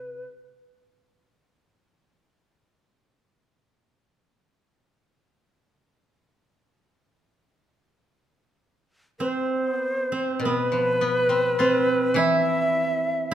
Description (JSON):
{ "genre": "japanese traditional, Japanese chamber music", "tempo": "free time", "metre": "none", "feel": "none", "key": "unclear", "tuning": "A4 = 440 Hz", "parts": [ { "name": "breathy bright shakuhachi", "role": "melody", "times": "0.0-0.3, 9.2-13.3 s", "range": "B4 to E5", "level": "-23 LUFS", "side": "equal", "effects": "none" }, { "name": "koto", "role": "accompaniment", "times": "0.0-0.2, 10.4-13.3 s", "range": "B2 to F4", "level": "-28 LUFS", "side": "left 4 dB", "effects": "none" }, { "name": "koto", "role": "second line", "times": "9.2-13.3 s", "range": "B3 to E4", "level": "-26 LUFS", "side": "right 4 dB", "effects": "none" } ], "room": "moderate scoring stage reverb, RT60 1.5 s", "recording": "none", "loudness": "-21 LUFS", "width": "side -10 dB against mid", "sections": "0.0-10.4 A section; 10.4-13.3 B section", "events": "none", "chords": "none", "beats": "free time" }